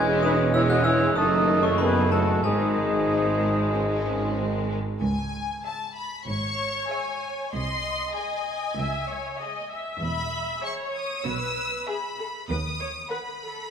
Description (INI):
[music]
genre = cinematic, playful, whimsical film cue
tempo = 96 BPM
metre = 4/4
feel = straight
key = C# minor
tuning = A4 = 438 Hz
[part]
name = glockenspiel with brass mallets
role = melody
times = 0.0-4.3 s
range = G#5 to G#6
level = -32 LUFS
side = left 4 dB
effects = none
[part]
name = warm studio violin section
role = melody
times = 0.0-13.7 s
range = G#3 to E6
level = -32 LUFS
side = left 4 dB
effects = none
[part]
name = mellow oboe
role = second line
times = 0.0-4.3 s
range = G#4 to F#5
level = -28 LUFS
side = right 2 dB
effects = none
[part]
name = rich studio violin section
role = second line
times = 0.0-13.6 s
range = G#3 to F#5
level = -34 LUFS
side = left 2 dB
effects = none
[part]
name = warm clarinet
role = second line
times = 0.0-4.7 s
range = B#4 to D#5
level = -33 LUFS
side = left 2 dB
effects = none
[part]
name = mellow bassoon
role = accompaniment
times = 0.0-4.7 s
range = G#3 to A3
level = -30 LUFS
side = equal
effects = none
[part]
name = warm studio viola section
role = accompaniment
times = 0.0-13.7 s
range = D#3 to E5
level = -31 LUFS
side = right 1 dB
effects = none
[part]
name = mellow French horn section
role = sustained chords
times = 0.0-4.4 s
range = G#3 to F#4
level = -30 LUFS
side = left 3 dB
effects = none
[part]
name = clear studio cello section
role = bass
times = 0.0-13.0 s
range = B#1 to B2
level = -30 LUFS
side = right 2 dB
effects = none
[part]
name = clear tuba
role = bass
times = 0.0-4.8 s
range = E1 to G#1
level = -31 LUFS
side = right 4 dB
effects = none
[part]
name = rich studio double bass section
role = bass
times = 0.0-13.0 s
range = E1 to D#2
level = -31 LUFS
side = right 3 dB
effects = none
[part]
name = silver concert flute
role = second line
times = 0.2-4.3 s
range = D#4 to D#5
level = -31 LUFS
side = left 3 dB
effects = none
[sound]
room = wet scoring stage reverb, RT60 2.0 s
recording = none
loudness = -23 LUFS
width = side -8 dB against mid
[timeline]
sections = 0.0-5.0 A section; 5.0-13.7 B section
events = none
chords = 0.0 C#m/E; 1.2 D#dim/F#; 2.4 G#; 5.0 C#m; 7.5 G#/B#; 8.8 C#m; 10.0 E; 12.5 B/D#